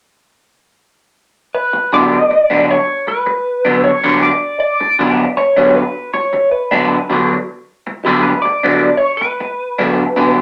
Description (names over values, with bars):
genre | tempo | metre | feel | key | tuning
rock | 78 BPM | 4/4 | straight | G lydian | A4 = 439 Hz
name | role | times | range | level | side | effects
lightly driven lead guitar | melody | 1.5-10.3 s | G4 to D5 | -17 LUFS | equal | wah
electric guitar through a small old amp | riff | 1.7-10.4 s | D3 to D4 | -17 LUFS | equal | phaser
room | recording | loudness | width
wet studio reverb, RT60 0.6 s | none | -14 LUFS | mono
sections
1.5-10.4 A section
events
none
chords
1.5 Gmaj7 (rootless)